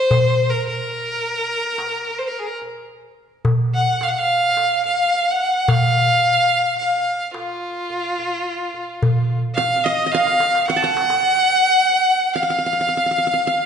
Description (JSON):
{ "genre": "Arabic maqam ensemble", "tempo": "108 BPM (eighths)", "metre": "10/8", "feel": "straight", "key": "unclear", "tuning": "A4 = 441 Hz", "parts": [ { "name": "clear violin", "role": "melody", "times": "0.0-13.7 s", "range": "F4 to Gb5+23c", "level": "-17 LUFS", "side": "equal", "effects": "none" }, { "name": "darbuka", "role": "percussion", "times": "0.1-11.2 s", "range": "none", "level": "-21 LUFS", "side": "equal", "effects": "none" }, { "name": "qanun", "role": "second line", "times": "9.6-13.7 s", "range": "Eb5 to A5", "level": "-22 LUFS", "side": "right 5 dB", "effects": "none" } ], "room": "wet concert hall reverb, RT60 1.9 s", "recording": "nothing above 10.5 kHz", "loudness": "-16 LUFS", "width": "side -7 dB against mid", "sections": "0.0-11.2 A section; 11.2-13.7 B section", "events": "drum fill 10.1-11.2", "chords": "none", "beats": "| 0.11 0.67 1.22 1.78 2.33 2.89 3.45 4.00 4.56 5.12 | 5.67 6.23 6.79 7.34 7.90 8.46 9.01 9.57 10.12 10.68 | 11.24 11.79 12.35 12.91 13.46" }